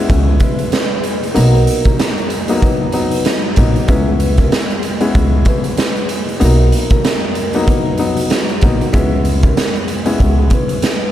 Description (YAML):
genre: hip hop, boom-bap hip-hop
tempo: 95 BPM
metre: 4/4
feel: swing 57% on 16ths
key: C# dorian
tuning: A4 = 440 Hz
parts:
  - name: clear upright piano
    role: accompaniment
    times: 0.0-11.1 s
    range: F#3 to E4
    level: -19 LUFS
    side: left 3 dB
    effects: cassette tape, high-pass filter, low-pass filter
  - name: upright bass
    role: bass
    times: 0.1-10.5 s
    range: A#1 to C#2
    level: -14 LUFS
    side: equal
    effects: none
  - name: raw garage drum kit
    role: drums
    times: 0.1-11.0 s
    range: hi-hat, kick drum, snare drum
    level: -15 LUFS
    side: equal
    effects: none
  - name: vibraphone with soft mallets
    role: melody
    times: 0.4-11.1 s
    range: A#4 to B4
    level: -23 LUFS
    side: right 1 dB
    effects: high-pass filter, low-pass filter, diffuse ambient delay
room: light reverb, small room ambience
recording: none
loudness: -12 LUFS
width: side -12 dB against mid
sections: 0.0-11.1 A section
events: none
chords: 0.0 C#m7; 1.4 Bmaj7; 3.9 C#m7; 6.4 Bmaj7; 8.9 C#m7